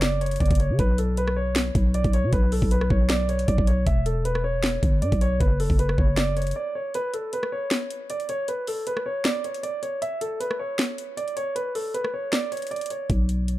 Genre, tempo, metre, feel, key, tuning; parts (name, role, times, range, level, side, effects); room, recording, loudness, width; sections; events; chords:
hip hop, trap; 156 BPM; 4/4; half-time; B minor; A4 = 440 Hz
dark baby grand piano; melody; 0.0-13.1 s; A4 to E5; -27 LUFS; right 1 dB; low-pass filter
growling 808-style bass; bass; 0.0-6.5, 13.1-13.6 s; E1 to C#3; -24 LUFS; equal
trap drum kit; drums; 0.0-13.6 s; hi-hat, kick drum, rim click, snare drum; -24 LUFS; equal
little or no reverb; dark, warm production; -22 LUFS; side -16 dB against mid
0.0-6.9 A section; 6.9-13.6 B section
break 6.6-6.9, 6.9-13.1
0.0 F#5; 0.8 Bsus2; 3.9 Em; 5.4 F#sus4; 6.9 N.C.